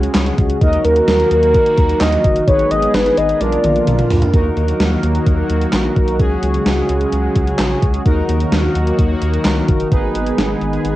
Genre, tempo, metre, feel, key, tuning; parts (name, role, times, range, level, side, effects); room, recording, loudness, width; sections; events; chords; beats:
synth-pop; 129 BPM; 4/4; straight; Eb minor; A4 = 440 Hz
analog synth brass; accompaniment; 0.0-11.0 s; Db4 to Cb5; -21 LUFS; right 1 dB; chorus, cassette tape, plate reverb
sweeping resonant pad; sustained chords; 0.0-11.0 s; Db3 to Ab4; -21 LUFS; equal; chorus, cassette tape
round analog bass; bass; 0.0-11.0 s; Gb1 to Eb2; -19 LUFS; equal
gated 80s digital drum machine; drums; 0.0-11.0 s; handclaps, hi-hat, kick drum, snare drum, toms; -17 LUFS; equal; gated reverb, gated reverb snare
mellow horn-like synth lead; melody; 0.6-4.1 s; Bb4 to Eb5; -15 LUFS; left 1 dB; chorus, cassette tape, tape echo, plate reverb
moderate small room reverb, RT60 0.5 s; home recording on cassette, nothing above 10.3 kHz; -13 LUFS; side -15 dB against mid
0.0-4.3 A section; 4.3-11.0 B section
drum fill 3.4-4.3
0.0 Dbsus4; 0.6 Ebm; 2.5 Abm; 3.4 Bb; 4.3 Ebm; 6.2 Dbsus4; 8.1 Ebm; 9.9 Abm
0.15 | 0.61 1.08 1.54 2.01 | 2.48 2.94 3.40 3.87 | 4.33 4.80 5.26 5.73 | 6.20 6.66 7.13 7.59 | 8.06 8.52 8.99 9.45 | 9.92 10.38 10.85